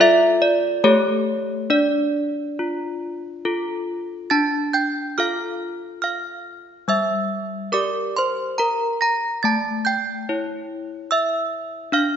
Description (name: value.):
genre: classical, tune for handbells.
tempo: 71 BPM.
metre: 3/4.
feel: straight.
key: D minor.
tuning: A4 = 439 Hz.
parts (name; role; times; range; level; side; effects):
desk bells; solo; 0.0-12.2 s; G3 to Bb6; -19 LUFS; equal; none.
room: wet scoring stage reverb, RT60 1.6 s.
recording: nothing above 7.5 kHz.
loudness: -19 LUFS.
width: side -8 dB against mid.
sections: 0.0-4.3 A section; 4.3-12.2 B section.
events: none.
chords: 0.0 Dm/F; 0.8 A7; 1.7 Dm; 6.9 Edim/G; 9.4 A7.